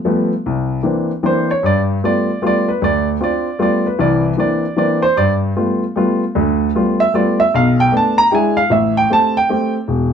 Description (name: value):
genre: jazz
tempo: 153 BPM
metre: 3/4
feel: swing 64% on 8ths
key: G mixolydian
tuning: A4 = 440 Hz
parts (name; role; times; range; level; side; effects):
- dark baby grand piano; solo; 0.0-10.1 s; E1 to Bb5; -13 LUFS; equal; none
room: wet small room reverb, RT60 0.6 s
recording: dark, warm production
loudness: -13 LUFS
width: side -7 dB against mid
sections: 0.0-10.1 A section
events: grand piano solo 0.0-10.1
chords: 0.4 C9; 1.6 G9; 2.8 Dm7; 3.6 G9; 4.0 C9; 5.2 G9; 7.5 Bm7b5; 8.3 E7; 8.7 Am7